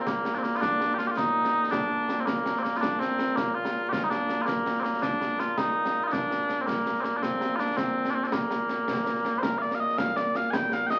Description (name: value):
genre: scottish traditional, Scottish pipe music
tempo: 109 BPM (dotted quarters)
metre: 6/8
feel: straight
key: Bb major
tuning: A4 = 440 Hz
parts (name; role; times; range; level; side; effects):
- mellow small bagpipes; melody; 0.0-11.0 s; Bb2 to Ab5; -28 LUFS; equal; none
- concert snare drum and concert bass drum; drums; 0.1-11.0 s; none; -34 LUFS; equal; none
room: moderate large studio reverb, RT60 1.2 s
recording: very old 78 rpm record, vinyl crackle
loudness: -27 LUFS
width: mono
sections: 0.6-9.4 A section; 9.4-11.0 B section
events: none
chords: none